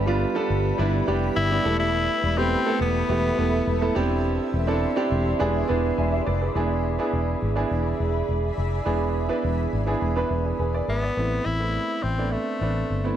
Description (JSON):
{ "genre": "pop", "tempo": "104 BPM", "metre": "4/4", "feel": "straight", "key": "unclear", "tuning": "A4 = 439 Hz", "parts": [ { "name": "warm concert grand piano", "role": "accompaniment", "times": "0.0-13.2 s", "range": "G3 to G#5", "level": "-25 LUFS", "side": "right 3 dB", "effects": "none" }, { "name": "granular cloud pad", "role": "sustained chords", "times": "0.0-11.1 s", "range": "G4 to C6", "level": "-32 LUFS", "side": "equal", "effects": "built-in reverb" }, { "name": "vintage muted fingered electric bass", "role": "bass", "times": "0.0-13.1 s", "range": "E1 to A1", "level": "-25 LUFS", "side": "left 1 dB", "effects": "none" }, { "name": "raspy tenor saxophone", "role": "melody", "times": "1.4-3.9, 10.9-13.2 s", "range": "A3 to E4", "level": "-26 LUFS", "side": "left 2 dB", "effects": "ping-pong delay" } ], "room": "light reverb, studio reverb", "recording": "none", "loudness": "-21 LUFS", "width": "side -10 dB against mid", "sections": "0.0-6.6 A section; 6.6-11.2 B section; 11.2-13.2 C section", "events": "none", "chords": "0.0 G; 1.7 Esus4; 4.0 Cadd9/E; 5.4 E7; 11.2 Amadd9", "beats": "0.21 0.79 1.36 | 1.94 2.52 3.09 3.67 | 4.25 4.82 5.40 5.98 | 6.55 7.13 7.71 8.29 | 8.86 9.44 10.02 10.59 | 11.17 11.75 12.32 12.90" }